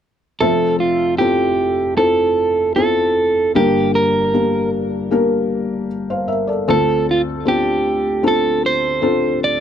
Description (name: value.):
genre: pop.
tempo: 77 BPM.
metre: 4/4.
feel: straight.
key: F major.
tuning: A4 = 440 Hz.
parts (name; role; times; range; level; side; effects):
electric guitar at the edge of break-up; melody; 0.4-9.6 s; F4 to D5; -17 LUFS; right 3 dB; none.
felt-muted upright piano; accompaniment; 0.4-9.6 s; F1 to F5; -18 LUFS; left 3 dB; none.
room: wet booth ambience, RT60 0.2 s.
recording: dry, close 1970s-style studio recording.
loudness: -15 LUFS.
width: side -9 dB against mid.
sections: 0.4-9.6 A section.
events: none.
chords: 0.4 Fmaj7; 3.6 Gm; 6.7 Dm7.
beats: | 0.41 1.20 1.99 2.78 | 3.56 4.34 5.12 5.91 | 6.69 7.46 8.24 9.03.